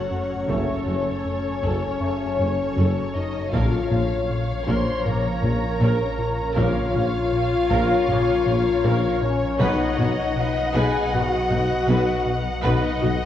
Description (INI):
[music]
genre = cinematic, hybrid orchestral and electronic film score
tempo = 79 BPM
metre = 4/4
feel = straight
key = unclear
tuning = A4 = 440 Hz
[part]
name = rich symphonic violin section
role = melody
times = 0.0-13.3 s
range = C#5 to B#5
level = -33 LUFS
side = left 2 dB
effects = none
[part]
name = dark symphonic violin section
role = second line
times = 0.0-13.3 s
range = C#5 to F#5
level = -30 LUFS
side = left 3 dB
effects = none
[part]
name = rich symphonic viola section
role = accompaniment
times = 0.0-13.1 s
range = C#4 to C#5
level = -31 LUFS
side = right 2 dB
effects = none
[part]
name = granular cloud pad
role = sustained chords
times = 0.0-13.3 s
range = E#3 to E#5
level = -31 LUFS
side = equal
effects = built-in reverb
[part]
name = mellow French horn section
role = sustained chords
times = 0.0-13.3 s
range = C#4 to B#4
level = -25 LUFS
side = left 3 dB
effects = none
[part]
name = sub bass with octave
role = bass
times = 0.0-13.3 s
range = F#1 to B1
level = -32 LUFS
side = equal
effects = none
[part]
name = sub drop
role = sound effects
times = 0.0-0.5 s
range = none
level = barely audible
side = none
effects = none
[part]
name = rubbery square bass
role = riff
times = 0.1-13.3 s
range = F#2 to B2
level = -29 LUFS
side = left 2 dB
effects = none
[part]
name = bright trombone section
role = sustained chords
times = 0.5-12.9 s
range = C#3 to B3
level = -33 LUFS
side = right 2 dB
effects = none
[part]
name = dark studio cello section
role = bass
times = 0.5-13.1 s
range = F#2 to B2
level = -28 LUFS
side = equal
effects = none
[part]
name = mellow tuba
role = bass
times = 0.5-13.2 s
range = F#1 to B1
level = -30 LUFS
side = right 1 dB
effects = none
[part]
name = rich symphonic double bass section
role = bass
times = 0.5-13.1 s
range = F#1 to B1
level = -30 LUFS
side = right 1 dB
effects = none
[part]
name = taiko ensemble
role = drums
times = 0.5-13.3 s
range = none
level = -30 LUFS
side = left 1 dB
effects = none
[sound]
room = wet scoring stage reverb, RT60 1.6 s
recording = worn, warbling old tape, cassette tape, warbly pitch drift, studio ambience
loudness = -20 LUFS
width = side -11 dB against mid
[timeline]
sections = 0.0-13.3 A section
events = impact 0.0-0.5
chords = 0.0 F#m; 3.5 A#m; 9.6 B